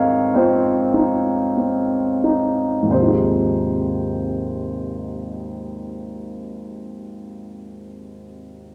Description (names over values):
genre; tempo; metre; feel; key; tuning
classical, lyrical solo piano; 41-54 BPM; 4/4; rubato; Ab major; A4 = 440 Hz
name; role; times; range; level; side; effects
dark concert grand piano; solo; 0.0-8.7 s; Ab1 to F5; -22 LUFS; equal; none
room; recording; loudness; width
wet scoring stage reverb, RT60 1.6 s; none; -20 LUFS; mono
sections
0.0-2.9 A section; 2.9-8.4 B section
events
slowing down 0.0-2.9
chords
0.0 Ab6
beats
0.34 1.55 | 2.92 4.34 5.70 7.02